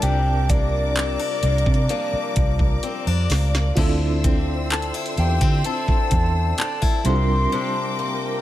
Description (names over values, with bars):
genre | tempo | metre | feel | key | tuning
contemporary R&B | 64 BPM | 4/4 | straight | unclear | A4 = 440 Hz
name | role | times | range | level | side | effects
soft octave-layered synth lead | melody | 0.0-8.4 s | D5 to C6 | -26 LUFS | left 1 dB | chorus, tape echo
FM electric piano with tremolo | accompaniment | 0.0-8.4 s | G3 to Bb4 | -30 LUFS | right 3 dB | none
warm studio string section | sustained chords | 0.0-8.4 s | Bb4 to E6 | -30 LUFS | equal | none
picked swing-style acoustic guitar | arpeggios | 0.0-8.4 s | C3 to E4 | -29 LUFS | left 8 dB | none
vintage muted fingered electric bass | bass | 0.0-7.5 s | C2 to D3 | -21 LUFS | equal | none
smooth R&B drum kit | drums | 0.0-7.3 s | crash cymbal, handclaps, hi-hat, kick drum, snare drum | -22 LUFS | equal | none
room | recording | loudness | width
little or no reverb | none | -18 LUFS | side -14 dB against mid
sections
0.0-8.4 A section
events
drum fill 2.8-3.8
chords
0.0 C9sus4; 3.8 Dm9; 7.1 C9sus4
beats
| 0.02 0.96 1.90 2.83 | 3.77 4.71 5.65 6.58 | 7.52